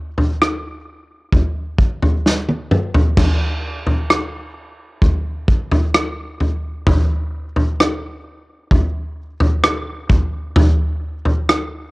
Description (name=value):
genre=pop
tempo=65 BPM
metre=4/4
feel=straight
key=none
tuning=none
part: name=natural country drum kit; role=drums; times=0.2-11.7 s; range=crash cymbal, kick drum, rim click, snare drum, toms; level=-16 LUFS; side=equal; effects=cassette tape
room=little or no reverb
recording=home recording on cassette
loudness=-16 LUFS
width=side -22 dB against mid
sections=0.0-3.2 A section; 3.2-11.9 B section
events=drum fill 2.3-3.2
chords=none